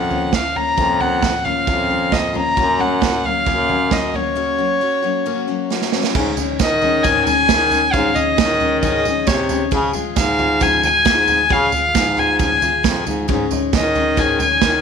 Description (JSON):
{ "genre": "indie folk with a building arrangement", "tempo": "134 BPM", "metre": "4/4", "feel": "straight", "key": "unclear", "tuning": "A4 = 440 Hz", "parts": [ { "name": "warm fiddle", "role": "melody", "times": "0.0-14.8 s", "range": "Db5 to Bb5", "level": "-17 LUFS", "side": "left 1 dB", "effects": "none" }, { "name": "picked steel-string acoustic guitar", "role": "accompaniment", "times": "0.0-14.8 s", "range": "F2 to Ab4", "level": "-23 LUFS", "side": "left 10 dB", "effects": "none" }, { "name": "mellow baritone saxophone", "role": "bass", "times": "0.0-14.8 s", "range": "F2 to Eb3", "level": "-22 LUFS", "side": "right 1 dB", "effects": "none" }, { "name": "unplugged drum kit", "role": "drums", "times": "0.1-14.7 s", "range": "crash cymbal, kick drum, snare drum, toms", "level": "-21 LUFS", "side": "right 5 dB", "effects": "none" }, { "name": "tambourine", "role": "percussion", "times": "6.1-14.7 s", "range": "none", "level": "-34 LUFS", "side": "right 14 dB", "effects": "none" } ], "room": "moderate echo chamber reverb, RT60 1.5 s, studio reverb", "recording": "1960s-style stereo with parts hard left and right", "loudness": "-14 LUFS", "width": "side -6 dB against mid", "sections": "0.0-6.1 A section; 6.1-14.8 B section", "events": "break 4.4-6.1; drum fill 5.7-6.1", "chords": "0.0 Bbmadd9/F; 2.6 Gb; 6.1 Absus4; 9.7 Db; 13.3 Absus4" }